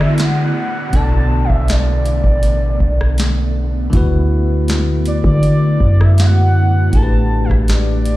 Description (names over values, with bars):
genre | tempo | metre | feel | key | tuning
contemporary R&B | 80 BPM | 4/4 | straight | D major | A4 = 443 Hz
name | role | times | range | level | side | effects
gliding portamento lead | melody | 0.0-8.2 s | D5 to A5 | -23 LUFS | equal | chorus, ping-pong delay
bell-like tine electric piano | accompaniment | 0.0-8.2 s | A2 to D5 | -21 LUFS | left 2 dB | medium stereo tremolo
ethereal airy pad | sustained chords | 0.0-8.2 s | D3 to G4 | -25 LUFS | right 2 dB | ensemble chorus, built-in reverb, sidechain pumping
warm 808-style bass | bass | 0.0-8.2 s | A1 to D3 | -14 LUFS | equal | none
booming analog drum machine | drums | 0.0-8.2 s | hi-hat, kick drum, rim click, snare drum | -17 LUFS | equal | none
downlifter | sound effects | 0.0-3.9 s | none | -30 LUFS | equal | none
room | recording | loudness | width
digital ambience | played on a big sound system in a bare room, large studio reverb | -12 LUFS | side -17 dB against mid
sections
0.0-8.2 A section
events
none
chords
0.0 D6; 0.9 Bm7; 3.9 D6; 6.9 A7sus4